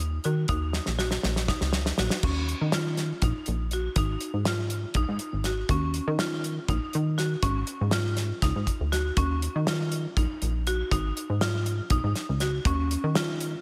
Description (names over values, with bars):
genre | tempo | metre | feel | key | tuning
progressive instrumental, band music in an uneven meter | 242 BPM (eighths) | 7/8 | straight | Eb minor | A4 = 440 Hz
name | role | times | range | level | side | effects
plucky analog bass | bass | 0.0-13.6 s | Ab1 to Eb3 | -30 LUFS | equal | none
buzzing marimba with medium hard mallets | arpeggios | 0.2-13.4 s | Db4 to Gb4 | -34 LUFS | equal | slapback echo
damped 70s drum kit | drums | 0.2-13.5 s | crash cymbal, hi-hat, kick drum, snare drum | -31 LUFS | equal | none
room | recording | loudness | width
moderate lush hall reverb, RT60 2.0 s | big arena sound | -27 LUFS | mono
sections
0.0-2.2 A section; 2.2-13.6 B section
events
drum fill 0.8-2.2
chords
0.0 Ebm; 2.2 Eb7(no3); 4.0 Abm; 5.7 Eb7(no3); 7.4 Absus4; 9.2 Eb7(no3); 10.9 Abm; 12.7 Eb7(no3)